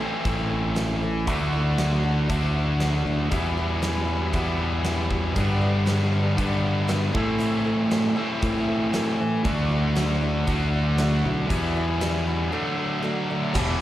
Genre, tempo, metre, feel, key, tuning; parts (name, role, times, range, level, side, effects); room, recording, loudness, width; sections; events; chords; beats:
classic rock; 117 BPM; 4/4; straight; A4 = 444 Hz
mellow reed electric piano; accompaniment; 0.0-13.8 s; F#4 to B5; -36 LUFS; equal; fast tremolo, slapback echo
picked steel-string acoustic guitar; accompaniment; 0.0-13.6 s; E2 to A4; -37 LUFS; right 1 dB
distorted electric guitar; riff; 0.0-13.8 s; E2 to F#4; -26 LUFS; equal; overdrive, slapback echo
growling fingered electric bass; bass; 0.3-13.8 s; E1 to A2; -24 LUFS; equal; overdrive
big rock drum kit; drums; 0.3-13.7 s; crash cymbal, hi-hat, kick drum, snare drum; -31 LUFS; equal
tube shaker; percussion; 13.5-13.7 s; -42 LUFS; right 1 dB
fuzz guitar; riff; 13.6-13.8 s; E2 to E3; -27 LUFS; equal; distortion
light reverb; live gig heard through the venue's PA, club reverb; -21 LUFS; side -13 dB against mid
0.0-13.6 A section
reed electric piano fill 12.0-13.6
0.0 Am; 1.3 Dadd9; 3.3 Emadd9; 5.4 G; 7.2 Am; 9.5 Dadd9; 11.5 Emadd9; 12.5 D
0.25 0.77 | 1.28 1.79 2.30 2.81 | 3.32 3.83 4.34 4.85 | 5.37 5.88 6.39 6.90 | 7.41 7.92 8.43 8.94 | 9.46 9.97 10.48 10.99 | 11.50 12.02 12.53 13.04 | 13.55